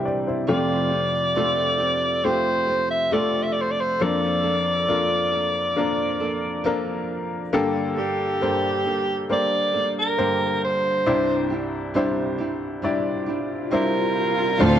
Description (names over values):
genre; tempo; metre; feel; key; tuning
pop ballad; 68 BPM; 4/4; straight; unclear; A4 = 438 Hz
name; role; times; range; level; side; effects
bright upright piano; accompaniment; 0.0-14.8 s; C2 to G5; -25 LUFS; left 3 dB; none
flamenco guitar; arpeggios; 0.0-14.8 s; G2 to A4; -29 LUFS; right 4 dB; none
warm soprano saxophone; melody; 0.5-14.8 s; G4 to E5; -22 LUFS; right 1 dB; none
warm studio violin section; second line; 14.6-14.8 s; F4 to F5; -26 LUFS; equal; none
warm studio string section; sustained chords; 14.6-14.8 s; A3 to C5; -27 LUFS; equal; none
bright studio cello section; bass; 14.6-14.8 s; D2; -17 LUFS; right 1 dB; none
room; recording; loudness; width
light reverb, small room ambience; dark, warm production; -20 LUFS; side -10 dB against mid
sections
0.0-14.6 A section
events
none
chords
0.5 Fadd9; 4.0 Bbmaj7/F; 7.5 Gmadd9; 11.1 Cadd9